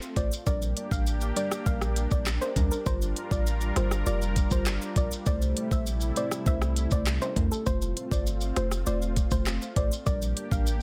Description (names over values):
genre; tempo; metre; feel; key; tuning
dancehall; 100 BPM; 4/4; straight; F major; A4 = 440 Hz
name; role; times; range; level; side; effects
lush unison pad; sustained chords; 0.0-10.8 s; C3 to Bb4; -39 LUFS; equal; chorus, sidechain pumping
afro-pop drum kit; drums; 0.0-10.8 s; handclaps, hi-hat, kick drum, rim click, shaker; -31 LUFS; equal; none
maracas and timbales; percussion; 0.0-10.8 s; none; -43 LUFS; equal; none
soft round pluck; melody; 0.2-10.6 s; A4 to F5; -38 LUFS; equal; chorus, delay
deep mellow chord stab; accompaniment; 0.2-10.7 s; G3 to C5; -37 LUFS; equal; chorus
clean 808-style bass; bass; 0.2-10.8 s; E1 to E2; -31 LUFS; equal; none
room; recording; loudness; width
little or no reverb; dense, heavily limited modern master; -28 LUFS; mono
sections
0.0-10.8 A section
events
none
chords
0.5 Bb6; 2.9 Gm7; 5.3 C6; 7.7 F; 10.1 Bb6